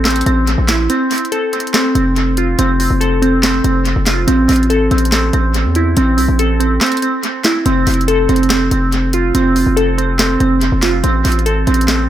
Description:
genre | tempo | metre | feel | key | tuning
hip hop, trap | 142 BPM | 4/4 | half-time | unclear | A4 = 441 Hz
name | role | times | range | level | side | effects
glassy wavetable pluck | arpeggios | 0.0-12.1 s | C4 to A4 | -14 LUFS | right 1 dB | chorus, low-pass filter, dub echo
hard-hitting 808-style bass | bass | 0.0-12.1 s | F1 to E2 | -16 LUFS | equal | none
trap drum kit | drums | 0.1-12.0 s | handclaps, hi-hat, snare drum | -20 LUFS | equal | dub echo
room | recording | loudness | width
moderate plate reverb, RT60 1.1 s, digital ambience | echo-heavy mix | -11 LUFS | side -11 dB against mid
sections
0.0-12.1 A section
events
break 0.9-1.7, 6.8-7.7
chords
0.0 Am; 0.9 F; 4.3 Am; 7.7 F; 11.0 Am

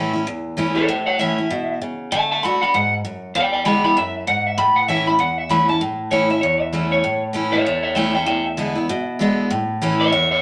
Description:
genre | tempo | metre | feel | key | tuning
rock | 195 BPM | 4/4 | swing 61% on 8ths | A major | A4 = 439 Hz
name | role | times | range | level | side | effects
picked steel-string acoustic guitar | accompaniment | 0.0-10.4 s | E2 to F#4 | -23 LUFS | equal | none
electric guitar through a small old amp | melody | 0.8-10.4 s | A4 to B5 | -21 LUFS | equal | none
room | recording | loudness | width
wet studio reverb, RT60 0.8 s | none | -19 LUFS | mono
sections
0.0-5.8 A section; 5.8-10.4 B section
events
clean electric guitar solo 5.8-10.4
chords
0.0 A; 2.1 D; 3.4 E7; 4.6 A; 8.3 E7; 9.5 A

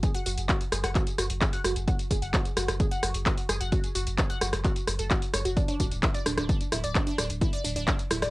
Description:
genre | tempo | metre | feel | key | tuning
driving peak-time techno | 130 BPM | 4/4 | straight | unclear | A4 = 439 Hz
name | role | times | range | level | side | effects
resonant blip pluck | riff | 0.0-8.3 s | D4 to F#5 | -33 LUFS | right 1 dB | phaser, tube saturation, sidechain pumping, cassette tape, analog delay
saturated sub bass | bass | 0.0-8.3 s | D1 to F#1 | -32 LUFS | equal | sidechain pumping, low-pass filter
electronic kick drum | drums | 0.0-8.0 s | none | -27 LUFS | equal | cassette tape
techno drum kit | drums | 0.0-8.3 s | handclaps, hi-hat, rim click, tambourine | -30 LUFS | equal | sidechain pumping on hats, cassette tape, sidechain pumping on perc
room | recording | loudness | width
little or no reverb | home recording on cassette | -25 LUFS | side -20 dB against mid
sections
0.0-8.3 A section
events
none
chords
none

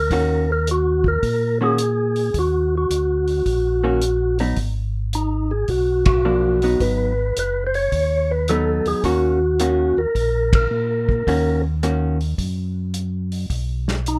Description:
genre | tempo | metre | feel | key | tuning
soul jazz organ trio | 108 BPM | 4/4 | swing 67% on 8ths | Eb minor | A4 = 438 Hz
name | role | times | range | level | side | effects
percussive tonewheel organ | melody | 0.0-14.2 s | Eb4 to Db5 | -22 LUFS | equal | fast rotary speaker
mellow tonewheel organ | bass | 0.0-14.2 s | Gb1 to Bb2 | -25 LUFS | equal | overdrive, chorus vibrato, slow rotary speaker
vintage hollow-body jazz guitar | accompaniment | 0.1-12.2 s | Eb3 to Gb4 | -26 LUFS | equal | none
warm soul drum kit | drums | 0.1-14.2 s | hi-hat, kick drum, ride cymbal, snare drum | -26 LUFS | equal | none
room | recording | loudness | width
light reverb | none | -20 LUFS | mono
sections
0.0-14.2 A section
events
band accent 6.0, 10.4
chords
0.1 Ebm7; 4.6 Abm7; 9.0 Ebm7; 13.5 N.C.

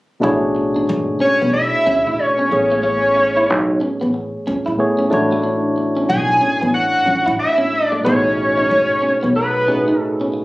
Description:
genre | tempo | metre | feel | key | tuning
R&B | 92 BPM | 4/4 | swing 62% on 16ths | unclear | A4 = 440 Hz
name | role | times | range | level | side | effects
electric guitar through a small old amp | second line | 0.2-10.4 s | A3 to E4 | -22 LUFS | right 1 dB | none
barky tine electric piano | accompaniment | 0.2-10.4 s | A2 to C#5 | -19 LUFS | equal | overdrive
upright bass | bass | 0.2-9.8 s | G#1 to A2 | -25 LUFS | equal | none
hollow square lead | melody | 1.2-10.3 s | B4 to G#5 | -16 LUFS | equal | chorus, slapback echo
room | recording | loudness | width
light reverb | recorded on a phone in the room, club reverb | -14 LUFS | side -19 dB against mid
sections
0.2-10.4 A section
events
none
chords
0.2 E13; 2.5 Amaj9; 5.1 Dmaj9/A; 8.0 B13

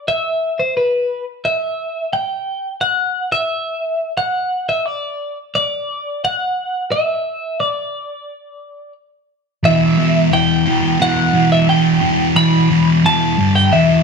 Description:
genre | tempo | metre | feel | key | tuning
rock | 88 BPM | 3/4 | straight | E minor | A4 = 437 Hz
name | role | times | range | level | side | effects
twelve-string electric guitar | melody | 0.0-14.0 s | B4 to B5 | -18 LUFS | equal | none
sludgy distorted guitar | riff | 9.6-14.0 s | E2 to G3 | -13 LUFS | equal | overdrive
room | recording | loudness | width
moderate stone room reverb, RT60 1.0 s | band playing live in one room | -14 LUFS | side -5 dB against mid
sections
0.0-9.6 A section; 9.6-14.0 B section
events
build-up 9.6-14.0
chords
0.0 N.C.; 9.6 Em; 13.4 G5

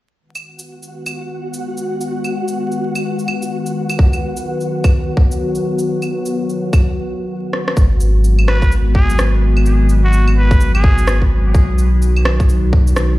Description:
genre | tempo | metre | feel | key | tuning
future garage | 127 BPM | 4/4 | swing 61% on 16ths | G# minor | A4 = 437 Hz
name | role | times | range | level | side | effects
warbly tape-like pad | sustained chords | 0.2-13.2 s | B2 to B4 | -21 LUFS | left 2 dB | chorus, built-in reverb, sidechain pumping
flickering grainy texture | texture | 0.7-6.8 s | F#4 to F#5 | -27 LUFS | right 1 dB | built-in reverb
electronic shaker, claves and rim click | drums | 0.4-13.1 s | none | -23 LUFS | equal | overdrive
electronic kick drum | drums | 4.0-12.8 s | none | -12 LUFS | equal | overdrive
warm sub bass | bass | 7.8-13.2 s | G#1 to B1 | -13 LUFS | equal | sidechain pumping
trumpet with straight mute | melody | 8.5-11.2 s | F#4 to B4 | -24 LUFS | right 1 dB | analog delay
room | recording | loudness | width
light reverb | played on a big sound system in a bare room, stone room reverb, vinyl crackle | -13 LUFS | side -17 dB against mid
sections
0.2-7.8 A section; 7.8-13.2 B section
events
break 6.8-7.8; drum fill 7.5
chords
0.2 G#m7; 4.0 B; 7.8 G#m7; 11.5 B

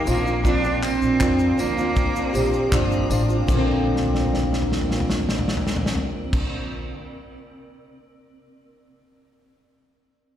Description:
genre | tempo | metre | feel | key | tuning
acoustic pop | 79 BPM | 4/4 | straight | Bb major | A4 = 445 Hz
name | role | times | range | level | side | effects
bright cello | melody | 0.0-2.7 s | Bb3 to D4 | -24 LUFS | right 3 dB | plate reverb, slapback echo, ping-pong delay
fingerpicked plugged-in steel-string acoustic guitar | accompaniment | 0.0-7.0 s | Bb2 to F4 | -24 LUFS | equal | double-tracked left and right, slapback echo
granular cloud pad | sustained chords | 0.0-6.4 s | C4 to D6 | -36 LUFS | right 1 dB | built-in reverb, plate reverb
upright bass | bass | 0.1-6.4 s | G1 to F2 | -26 LUFS | equal | none
natural country drum kit | drums | 0.1-8.0 s | crash cymbal, handclaps, kick drum, snare drum, tambourine, toms | -24 LUFS | equal | none
egg shaker | percussion | 0.1-6.4 s | none | -45 LUFS | left 3 dB | none
vibraphone with soft mallets | second line | 2.3-6.4 s | D4 to G4 | -28 LUFS | left 2 dB | plate reverb
room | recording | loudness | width
light reverb | live gig heard through the venue's PA, recital hall reverb | -19 LUFS | side -10 dB against mid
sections
0.0-3.5 A section; 3.5-6.5 B section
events
drum fill 3.9-6.3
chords
0.1 Bbadd9

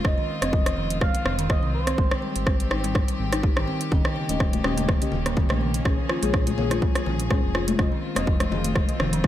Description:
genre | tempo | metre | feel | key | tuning
afro house | 124 BPM | 4/4 | swing 54% on 16ths | F minor | A4 = 440 Hz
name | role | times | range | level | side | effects
expressive synth lead | melody | 0.0-2.7 s | C5 to F5 | -32 LUFS | right 2 dB | analog chorus, dub echo
bright chamber string section | sustained chords | 0.0-9.3 s | Eb3 to Ab4 | -34 LUFS | left 2 dB | sidechain pumping
dark detuned saw bass | bass | 0.0-9.3 s | Eb1 to C2 | -29 LUFS | equal | sidechain pumping
electronic kick drum | drums | 0.0-9.3 s | none | -23 LUFS | equal | overdrive
house drum kit | drums | 0.0-9.3 s | hi-hat, rim click | -29 LUFS | right 1 dB | overdrive
kalimba | arpeggios | 0.2-9.2 s | Db3 to G4 | -30 LUFS | equal | sidechain pumping, dub echo
deep mellow chord stab | stabs | 3.9-9.3 s | Ab3 to Eb5 | -32 LUFS | left 5 dB | chorus, sidechain pumping, dub echo
congas | percussion | 3.9-9.3 s | none | -30 LUFS | left 5 dB | none
room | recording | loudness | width
little or no reverb | none | -21 LUFS | side -12 dB against mid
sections
0.0-9.3 A section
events
none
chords
0.0 F7(no3); 2.0 Abmaj7; 3.9 Eb7; 5.9 Bbm7; 7.8 Fm7

